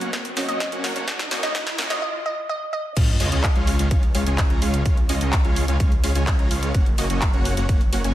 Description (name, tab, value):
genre	EDM, festival progressive house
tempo	127 BPM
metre	4/4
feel	straight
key	unclear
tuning	A4 = 438 Hz
part	lush unison pad	sustained chords	0.0-2.0 s	Gb3 to Bb4	-39 LUFS	right 1 dB	chorus, sidechain pumping
part	dense compressed supersaw	riff	0.0-8.1 s	Ab3 to Bb5	-26 LUFS	equal	vintage 12-bit sampler grit, sidechain pumping, dub echo
part	big-room dance drum kit	drums	0.0-8.1 s	crash cymbal, handclaps, hi-hat, ride cymbal, snare drum	-27 LUFS	equal	high-pass filter on snare, high-pass filter on hats, high-pass filter on cymbals
part	riser and sub drop	sound effects	0.0-4.9 s	none	-30 LUFS	equal	none
part	electronic kick drum	drums	0.1-7.8 s	none	-20 LUFS	equal	high-pass filter on kick
part	glassy wavetable pluck	melody	0.5-2.9 s	Eb5	-29 LUFS	right 1 dB	chorus, cassette tape, dub echo
part	wide detuned saw bass	bass	3.0-8.1 s	Gb1 to Db2	-24 LUFS	equal	chorus, sidechain pumping
room	light reverb, digital ambience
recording	high-pass filter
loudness	-19 LUFS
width	side -14 dB against mid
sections	0.0-3.0 A section; 3.0-8.1 B section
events	build-up 0.0-3.0; drum fill 0.0-2.0; riser 0.0-2.0; filter sweep 0.0-3.0; break 2.0-3.0; drop 3.0-8.1; impact 3.0-4.9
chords	0.0 Gb; 3.0 Db; 6.7 Gb